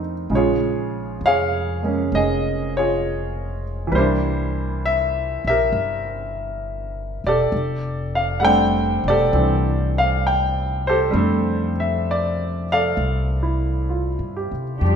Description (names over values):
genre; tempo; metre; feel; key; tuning
jazz ballad; 66 BPM; 4/4; swing 68% on 8ths; F major; A4 = 440 Hz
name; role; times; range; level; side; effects
clear baby grand piano; accompaniment; 0.0-15.0 s; Db3 to G5; -20 LUFS; equal; none
upright bass; bass; 0.0-15.0 s; E1 to C3; -24 LUFS; left 1 dB; none
muted symphonic cello section; sustained chords; 14.8-15.0 s; F3 to G4; -21 LUFS; left 1 dB; none
room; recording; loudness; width
moderate recital hall reverb, RT60 1.3 s; recorded in a church or concert hall; -18 LUFS; side -7 dB against mid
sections
0.0-14.8 A section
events
none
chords
0.3 Bbm7; 3.9 C9; 7.5 F69